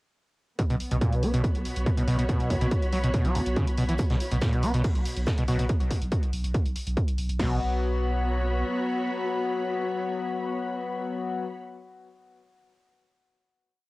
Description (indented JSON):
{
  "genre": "driving peak-time techno",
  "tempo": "141 BPM",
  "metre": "4/4",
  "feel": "straight",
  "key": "unclear",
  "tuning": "A4 = 441 Hz",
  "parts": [
    { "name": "overdriven acid bass", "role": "riff", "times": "0.6-7.6 s", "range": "B1 to B3", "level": "-28 LUFS", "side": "equal", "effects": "lush chorus, vintage 12-bit sampler grit, sidechain pumping, analog delay" },
    { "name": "electronic hi-hat", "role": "drums", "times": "0.6-7.4 s", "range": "none", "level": "-41 LUFS", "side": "equal", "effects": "overdrive, sidechain pumping on hats, cassette tape" },
    { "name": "techno drum kit", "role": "drums", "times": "0.6-7.5 s", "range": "crash cymbal, kick drum, snare drum", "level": "-26 LUFS", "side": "equal", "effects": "overdrive, cassette tape" },
    { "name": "dark studio string section", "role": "texture", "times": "0.6-11.6 s", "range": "B3 to B5", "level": "-33 LUFS", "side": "equal", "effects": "sidechain pumping" },
    { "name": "saturated sub bass", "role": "bass", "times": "0.7-8.6 s", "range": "B1", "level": "-29 LUFS", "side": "equal", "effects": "sidechain pumping, low-pass filter" },
    { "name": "vintage brush drum kit", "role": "drums", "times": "4.0-5.6 s", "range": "hi-hat, shaker, snare drum", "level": "-40 LUFS", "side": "equal", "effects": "sidechain pumping on hats, high-pass filter on hats, cassette tape, high-pass filter on snare, sidechain pumping on perc, high-pass filter on perc, high-pass filter on room" },
    { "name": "sync-sweep polysynth", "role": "stabs", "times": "5.5-11.4 s", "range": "F#3 to F#4", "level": "-31 LUFS", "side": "left 4 dB", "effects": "chorus, sidechain pumping, analog delay" }
  ],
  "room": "light reverb, studio ambience",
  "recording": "home recording on cassette",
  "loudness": "-24 LUFS",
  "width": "side -20 dB against mid",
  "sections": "0.6-7.4 groove; 7.4-10.8 final chord",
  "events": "none",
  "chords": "0.6 B5"
}